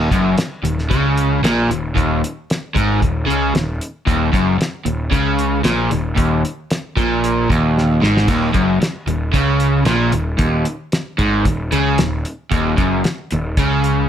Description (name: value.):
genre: classic rock.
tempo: 114 BPM.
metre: 4/4.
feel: straight.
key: Eb minor.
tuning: A4 = 440 Hz.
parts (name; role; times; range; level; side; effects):
crunchy overdriven guitar; riff; 0.0-14.1 s; Eb2 to Db3; -16 LUFS; equal; none.
fuzz picked electric bass; bass; 0.0-14.1 s; Eb1 to Db2; -21 LUFS; equal; overdrive.
cloth-damped thuddy drum kit; drums; 0.1-14.0 s; crash cymbal, hi-hat, kick drum, snare drum; -20 LUFS; equal; none.
room: light reverb.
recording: none.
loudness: -15 LUFS.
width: side -9 dB against mid.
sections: 0.0-14.1 A section.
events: drum fill 7.8-8.3.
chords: 0.0 Ebm.